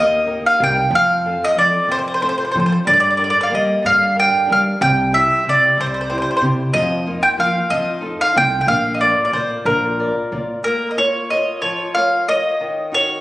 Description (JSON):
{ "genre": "italian folk, Italian serenade", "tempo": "62 BPM (dotted quarters)", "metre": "6/8", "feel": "straight", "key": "Bb major", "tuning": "A4 = 440 Hz", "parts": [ { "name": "mandolin", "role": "melody", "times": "0.0-13.2 s", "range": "Bb4 to G5", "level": "-15 LUFS", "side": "equal", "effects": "none" }, { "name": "flamenco guitar", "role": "accompaniment", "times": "0.0-13.2 s", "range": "C3 to D5", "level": "-26 LUFS", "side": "left 1 dB", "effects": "none" }, { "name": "upright bass", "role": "bass", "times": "0.0-10.5 s", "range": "Bb1 to G3", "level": "-23 LUFS", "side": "equal", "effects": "none" } ], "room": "moderate scoring stage reverb, RT60 1.9 s", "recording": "recorded on a phone in the room, club reverb, compression", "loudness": "-14 LUFS", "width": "side -17 dB against mid", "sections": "0.0-10.6 A section; 10.6-13.2 B section", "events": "none", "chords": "0.0 Eb; 0.9 F; 2.9 Gm; 4.8 C; 6.7 F7sus4; 7.7 F7; 8.7 Bb; 10.6 Bbm; 12.6 Ebm", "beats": "| 0.91 1.88 | 2.86 3.84 | 4.81 5.78 | 6.75 7.71 | 8.68 9.66 | 10.64 11.62 | 12.60" }